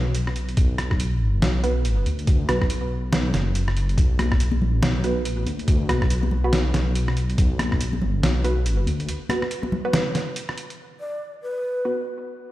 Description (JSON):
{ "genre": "deep dubstep", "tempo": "141 BPM", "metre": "4/4", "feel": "swing 60% on 16ths, half-time", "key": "B minor", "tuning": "A4 = 440 Hz", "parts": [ { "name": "dark detuned saw bass", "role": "bass", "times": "0.0-9.1 s", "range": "F#1 to D2", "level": "-22 LUFS", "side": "equal", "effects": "tube saturation" }, { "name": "trip hop sampler-style drum kit", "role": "drums", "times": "0.1-10.8 s", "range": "hi-hat, rim click, snare drum", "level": "-26 LUFS", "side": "equal", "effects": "low-pass filter on hats, studio reverb, low-pass filter on snare" }, { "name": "electronic kick drum", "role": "drums", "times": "0.6-7.8 s", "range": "none", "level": "-20 LUFS", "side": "equal", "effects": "studio reverb" }, { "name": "filtered dub chord stab", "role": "stabs", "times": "1.6-12.0 s", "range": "B3 to B4", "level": "-29 LUFS", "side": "right 2 dB", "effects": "chorus, dub echo" }, { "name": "congas", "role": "percussion", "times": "4.2-9.8 s", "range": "none", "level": "-30 LUFS", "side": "left 2 dB", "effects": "dub echo" }, { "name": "breathy mellow long shakuhachi", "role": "melody", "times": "11.0-12.0 s", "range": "B4 to D5", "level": "-27 LUFS", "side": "equal", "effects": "dub echo" } ], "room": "light reverb, digital ambience", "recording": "played on a big sound system in a bare room, large studio reverb", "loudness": "-20 LUFS", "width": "side -15 dB against mid", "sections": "0.0-10.8 A section; 10.8-12.5 B section", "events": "break 9.1-10.8; filter sweep on drum 10.8-12.5", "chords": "0.0 B5" }